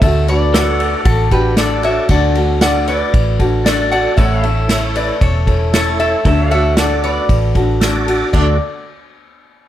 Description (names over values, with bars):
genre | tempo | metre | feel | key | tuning
honky-tonk and classic country | 115 BPM | 4/4 | straight | D major | A4 = 440 Hz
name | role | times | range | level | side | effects
lap resonator guitar | melody | 0.0-8.6 s | F#4 to F#5 | -18 LUFS | left 1 dB | none
picked acoustic archtop guitar | accompaniment | 0.0-8.6 s | A2 to A4 | -20 LUFS | left 2 dB | none
vintage muted fingered electric bass | bass | 0.0-8.6 s | E1 to D2 | -17 LUFS | right 1 dB | none
unplugged drum kit | drums | 0.0-8.5 s | crash cymbal, kick drum, ride cymbal, snare drum | -18 LUFS | equal | none
tonewheel organ | accompaniment | 0.5-8.6 s | E4 to D5 | -25 LUFS | right 4 dB | overdrive, chorus vibrato, slow rotary speaker
pedal steel guitar | sustained chords | 0.5-8.3 s | A4 to F#5 | -25 LUFS | equal | none
room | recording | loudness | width
light reverb | none | -12 LUFS | side -12 dB against mid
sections
0.0-8.3 A section; 8.3-9.7 B section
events
none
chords
0.0 D; 4.2 A; 6.3 D